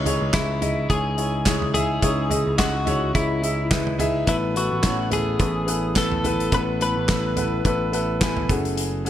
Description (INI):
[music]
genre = piano-driven pop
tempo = 107 BPM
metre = 4/4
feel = swing 56% on 16ths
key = C# minor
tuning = A4 = 440 Hz
[part]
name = clear concert grand piano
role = accompaniment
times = 0.0-9.1 s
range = A2 to G#5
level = -25 LUFS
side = left 1 dB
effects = none
[part]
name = picked electric bass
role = bass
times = 0.0-9.1 s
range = F#1 to C#2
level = -26 LUFS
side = right 1 dB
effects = none
[part]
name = loose indie drum kit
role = drums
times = 0.1-9.1 s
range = handclaps, hi-hat, kick drum, snare drum, toms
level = -24 LUFS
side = right 1 dB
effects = none
[part]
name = twelve-string electric guitar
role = melody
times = 0.3-8.5 s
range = E4 to B4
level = -26 LUFS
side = left 2 dB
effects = none
[sound]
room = light reverb, studio reverb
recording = none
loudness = -20 LUFS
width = side -11 dB against mid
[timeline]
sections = 0.0-9.1 A section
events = grand piano fill 7.7-8.8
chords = 0.0 C#madd9; 4.3 Asus2; 8.5 F#madd9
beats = 0.34 0.90 1.46 | 2.02 2.58 3.15 3.71 | 4.27 4.83 5.40 5.96 | 6.52 7.09 7.65 8.21 | 8.78